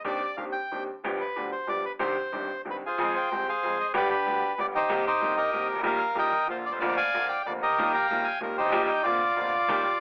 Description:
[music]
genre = tango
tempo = 188 BPM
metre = 3/4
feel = rubato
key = Eb major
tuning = A4 = 440 Hz
[part]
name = bandoneon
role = melody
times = 0.0-10.0 s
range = D4 to Bb5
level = -28 LUFS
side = equal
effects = none
[part]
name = bright upright piano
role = accompaniment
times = 0.0-9.8 s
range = D1 to Ab4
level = -33 LUFS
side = equal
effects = none
[sound]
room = light reverb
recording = telephone sound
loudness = -27 LUFS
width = mono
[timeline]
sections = 0.0-3.0 A section; 3.0-10.0 B section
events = none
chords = 0.1 Cmadd9/Eb; 1.0 G7; 2.0 Cmadd9; 3.0 Fm; 3.9 G; 4.9 Cm7; 5.9 Eb/Bb; 6.5 Bb; 7.8 Ebadd9; 8.7 Eb/Bb; 9.1 Bbadd9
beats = | 0.07 0.39 0.72 | 1.04 1.36 1.68 | 2.00 2.33 2.66 | 2.98 3.31 3.63 | 3.95 4.26 4.58 | 4.90 5.22 5.53 | 5.85 6.17 6.49 | 6.81 7.13 7.46 | 7.78 8.10 8.42 | 8.73 9.05 9.37 | 9.68

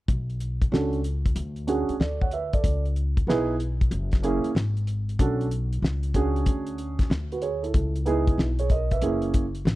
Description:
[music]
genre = hip hop, jazz-hop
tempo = 94 BPM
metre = 4/4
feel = swing 66% on 16ths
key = B dorian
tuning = A4 = 440 Hz
[part]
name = upright bass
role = bass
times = 0.1-9.8 s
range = F#1 to D2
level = -27 LUFS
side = left 1 dB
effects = none
[part]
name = cloth-damped thuddy drum kit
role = drums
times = 0.1-9.8 s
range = hi-hat, kick drum, snare drum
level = -24 LUFS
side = left 1 dB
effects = none
[part]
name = dark concert grand piano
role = accompaniment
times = 0.7-9.4 s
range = A#3 to F#5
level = -26 LUFS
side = right 3 dB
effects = low-pass filter
[sound]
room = small room ambience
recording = dry, close 1970s-style studio recording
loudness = -23 LUFS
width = side -17 dB against mid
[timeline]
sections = 0.1-5.2 A section; 5.2-9.8 B section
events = filter sweep on grand piano 0.1-5.2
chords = 0.1 Bm9; 2.6 C#m7; 3.9 F#9; 5.2 Bm9; 7.7 C#m7; 9.0 F#9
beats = | 0.09 0.72 1.36 2.00 | 2.64 3.28 3.92 4.55 | 5.19 5.83 6.47 7.11 | 7.74 8.38 9.02 9.66

